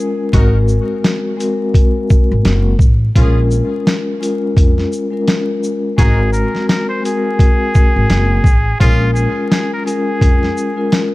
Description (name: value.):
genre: hip hop, boom-bap hip-hop.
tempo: 85 BPM.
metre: 4/4.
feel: swing 59% on 16ths.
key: Bb minor.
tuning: A4 = 439 Hz.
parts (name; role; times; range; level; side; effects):
vibraphone with soft mallets; accompaniment; 0.0-11.1 s; Ab3 to Bb4; -18 LUFS; left 2 dB; cassette tape, high-pass filter, low-pass filter.
clear horn section; stabs; 0.3-9.0 s; Db4 to Bb4; -28 LUFS; equal; high-pass filter, low-pass filter, ping-pong delay.
upright bass; bass; 0.3-10.5 s; Gb1 to F2; -14 LUFS; equal; none.
boom bap sampler-style drum kit; drums; 0.3-11.1 s; hi-hat, kick drum, shaker, snare drum; -13 LUFS; equal; none.
trumpet with straight mute; melody; 6.0-11.1 s; F4 to C5; -21 LUFS; right 1 dB; high-pass filter, low-pass filter.
room: studio reverb.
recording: dark, warm production, vinyl crackle.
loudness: -12 LUFS.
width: side -19 dB against mid.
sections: 0.0-11.1 A section.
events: none.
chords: 0.3 Ab9; 3.2 Bbm7; 6.0 Ab9; 8.8 Bbm7.